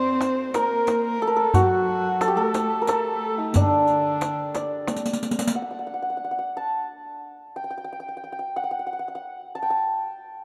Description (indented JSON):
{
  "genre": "Persian modal ensemble",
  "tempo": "60 BPM (dotted quarters)",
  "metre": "6/8",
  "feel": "straight",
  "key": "D dastgah homayun",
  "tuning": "A4 = 440 Hz",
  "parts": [
    { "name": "santur", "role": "melody", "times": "0.0-10.4 s", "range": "D4 to A5", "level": "-26 LUFS", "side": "equal", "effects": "none" },
    { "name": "dark kamancheh", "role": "second line", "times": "0.0-4.9 s", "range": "D4 to C5", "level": "-31 LUFS", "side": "equal", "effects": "none" },
    { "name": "warm studio cello section", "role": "second line", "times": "0.0-4.9 s", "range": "D3 to C4", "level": "-33 LUFS", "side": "equal", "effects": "none" },
    { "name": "riq", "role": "percussion", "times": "0.2-5.5 s", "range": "none", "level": "-31 LUFS", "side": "equal", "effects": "none" },
    { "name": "tombak", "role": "percussion", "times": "0.2-5.0 s", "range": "none", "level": "-26 LUFS", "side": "equal", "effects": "none" }
  ],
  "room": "moderate plate reverb, RT60 2.8 s",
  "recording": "rough home demo mix",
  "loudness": "-24 LUFS",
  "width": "mono",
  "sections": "0.0-5.5 A section; 5.5-10.4 B section",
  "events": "drum fill 4.9-5.5",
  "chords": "none",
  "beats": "0.54 | 1.54 2.54 | 3.54 4.54 | 5.54 6.55 | 7.55 8.55 | 9.55"
}